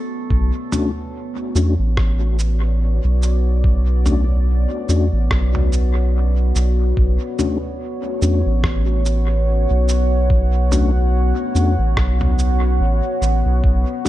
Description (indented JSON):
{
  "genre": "ambient dub",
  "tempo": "72 BPM",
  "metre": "4/4",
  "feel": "swing 57% on 16ths",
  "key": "B minor",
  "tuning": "A4 = 440 Hz",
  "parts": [
    { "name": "deep dark ambient pad", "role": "sustained chords", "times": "0.0-14.1 s", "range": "B3 to F#5", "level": "-24 LUFS", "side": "equal", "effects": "chorus, built-in reverb" },
    { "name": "soft dub sub bass", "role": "bass", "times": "0.3-13.8 s", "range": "A1 to E2", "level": "-16 LUFS", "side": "equal", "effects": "none" },
    { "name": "electronic kick drum", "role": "drums", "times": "0.3-13.8 s", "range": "none", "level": "-18 LUFS", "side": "equal", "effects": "studio reverb" },
    { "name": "mellow tonewheel organ", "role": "stabs", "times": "0.7-14.1 s", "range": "A3 to F#4", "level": "-25 LUFS", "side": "left 5 dB", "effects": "chorus vibrato, fast rotary speaker, dub echo" },
    { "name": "lo-fi sampler-style drum kit", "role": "drums", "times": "0.7-14.1 s", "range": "cabasa, rim click, toms", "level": "-27 LUFS", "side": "right 1 dB", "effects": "studio reverb, dub echo" }
  ],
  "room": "digital ambience",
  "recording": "dark, warm production",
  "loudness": "-15 LUFS",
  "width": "side -14 dB against mid",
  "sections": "0.3-14.1 A section",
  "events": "break 0.0-0.3",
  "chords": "0.3 Bm7",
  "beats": "| 0.31 1.14 1.97 2.81 | 3.64 4.47 5.31 6.14 | 6.97 7.81 8.64 9.47 | 10.31 11.14 11.97 12.81 | 13.64"
}